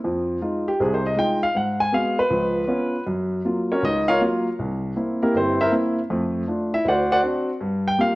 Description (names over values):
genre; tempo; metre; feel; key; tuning
solo jazz; 158 BPM; 4/4; swing 66% on 8ths; unclear; A4 = 440 Hz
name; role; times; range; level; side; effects
dark grand piano; solo; 0.0-8.2 s; G1 to Ab5; -20 LUFS; equal; none
room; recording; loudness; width
moderate large studio reverb, RT60 1.4 s; worn, warbling old tape, cassette tape, warbly pitch drift; -20 LUFS; side -20 dB against mid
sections
0.0-8.2 A section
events
grand piano solo 0.0-8.2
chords
0.0 Fm7; 1.5 Abm7; 2.3 Db7; 3.1 Gbmaj7; 4.6 C7; 6.1 F6; 6.8 D7; 7.6 Gm7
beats
| 0.04 0.41 0.79 1.17 | 1.55 1.93 2.31 2.68 | 3.06 3.44 3.82 4.20 | 4.58 4.95 5.33 5.71 | 6.09 6.47 6.85 7.22 | 7.60 7.98